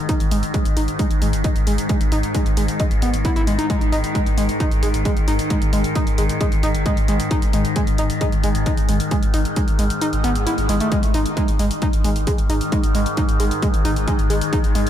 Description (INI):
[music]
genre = driving peak-time techno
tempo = 133 BPM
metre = 4/4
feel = straight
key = unclear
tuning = A4 = 437 Hz
[part]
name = overtone-sweeping drone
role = drone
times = 0.0-14.9 s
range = G#2 to D#3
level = -25 LUFS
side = left 2 dB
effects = chorus, built-in reverb, sidechain pumping
[part]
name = overdriven synth lead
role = riff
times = 0.1-14.8 s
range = G#3 to E4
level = -23 LUFS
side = equal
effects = distortion, tube saturation, sidechain pumping, tape echo
[part]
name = electronic hi-hat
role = drums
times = 0.1-14.9 s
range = none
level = -32 LUFS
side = left 1 dB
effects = overdrive, sidechain pumping on hats, sidechain pumping on cymbals
[part]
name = electronic kick drum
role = drums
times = 0.1-14.6 s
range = none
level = -20 LUFS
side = equal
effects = overdrive
[part]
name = warm sub bass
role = bass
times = 0.2-14.9 s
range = G#1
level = -23 LUFS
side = equal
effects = tube saturation, sidechain pumping, low-pass filter
[part]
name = swell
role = sound effects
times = 10.2-10.9 s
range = none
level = -32 LUFS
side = equal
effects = none
[sound]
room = light reverb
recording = none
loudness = -17 LUFS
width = side -10 dB against mid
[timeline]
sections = 0.0-14.9 A section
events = kick drops out 10.0-10.9; swell 10.2-10.9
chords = 0.0 G#5